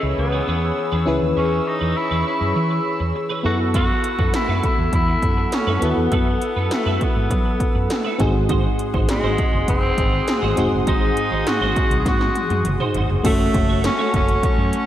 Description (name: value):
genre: 1980s-style pop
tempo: 101 BPM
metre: 4/4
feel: straight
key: unclear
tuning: A4 = 440 Hz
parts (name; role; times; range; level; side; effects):
- raspy tenor saxophone; melody; 0.0-14.9 s; G#3 to G#4; -24 LUFS; equal; diffuse ambient delay
- FM electric piano; accompaniment; 0.0-14.9 s; G#2 to B4; -24 LUFS; left 2 dB; chorus
- brassy analog pad; sustained chords; 0.0-14.9 s; G#4 to E6; -27 LUFS; left 1 dB; chorus
- twelve-string electric guitar; riff; 0.0-14.6 s; C#4 to C#5; -30 LUFS; right 4 dB; ensemble chorus, diffuse ambient delay
- fretless electric bass; bass; 0.0-14.7 s; E1 to F#3; -23 LUFS; equal; none
- 80s electronic pad drums; drums; 3.7-14.9 s; crash cymbal, hi-hat, kick drum, snare drum, toms; -21 LUFS; equal; gated reverb on snare and toms
room: wet lush hall reverb, RT60 2.0 s, digital ambience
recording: dreamy mix soaked in reverb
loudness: -17 LUFS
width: side -12 dB against mid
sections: 0.0-13.2 A section; 13.2-14.9 B section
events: drum fill 12.1-13.2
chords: 0.0 E6; 3.4 B7sus4; 8.2 G#7; 13.2 F#m